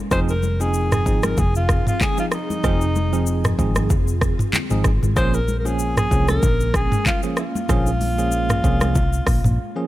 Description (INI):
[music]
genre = afrobeats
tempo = 95 BPM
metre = 4/4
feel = swing 55% on 16ths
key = F minor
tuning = A4 = 439 Hz
[part]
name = ethereal airy pad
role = sustained chords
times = 0.0-9.9 s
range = F3 to Ab4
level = -30 LUFS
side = equal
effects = ensemble chorus, built-in reverb, tremolo
[part]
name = breathy alto saxophone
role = melody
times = 0.1-9.9 s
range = Eb4 to C5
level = -25 LUFS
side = equal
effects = none
[part]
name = bell-like tine electric piano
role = accompaniment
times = 0.1-9.9 s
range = F3 to Ab4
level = -25 LUFS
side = right 3 dB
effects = medium stereo tremolo
[part]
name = hollow-body short-scale fingered electric bass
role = bass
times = 0.1-9.6 s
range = F1 to C2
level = -21 LUFS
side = equal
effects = none
[part]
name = afro-pop drum kit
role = drums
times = 0.1-9.6 s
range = handclaps, hi-hat, kick drum, rim click, shaker, toms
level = -21 LUFS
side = equal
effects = none
[part]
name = congas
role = percussion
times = 0.4-9.1 s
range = none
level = -30 LUFS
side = left 2 dB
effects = none
[sound]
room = little or no reverb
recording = none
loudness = -17 LUFS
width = side -15 dB against mid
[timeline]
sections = 0.0-9.9 A section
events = break 9.6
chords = 0.1 Fm7; 5.2 Bbm7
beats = | 0.11 0.74 1.38 2.01 | 2.64 3.27 3.90 4.53 | 5.17 5.80 6.43 7.06 | 7.69 8.32 8.96 9.59